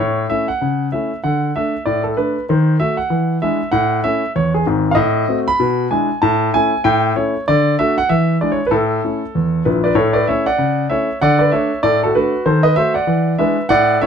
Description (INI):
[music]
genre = jazz, stride piano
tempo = 192 BPM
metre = 4/4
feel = swing 60% on 8ths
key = A major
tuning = A4 = 440 Hz
[part]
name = clear grand piano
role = solo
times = 0.0-14.1 s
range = G#1 to B5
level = -14 LUFS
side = equal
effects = none
[sound]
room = moderate studio reverb, RT60 0.5 s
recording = dark, warm production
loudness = -14 LUFS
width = side -7 dB against mid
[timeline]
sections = 0.0-10.0 A section; 10.0-14.1 A section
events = none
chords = 0.0 A; 0.6 A/C#; 1.2 D; 2.5 D#dim7; 3.1 E7; 3.7 A; 5.0 Adim7; 5.6 E7/B; 6.2 A; 7.5 D; 8.1 E7; 8.7 A; 10.6 A/C#; 11.2 D; 12.5 D#dim7; 13.1 E7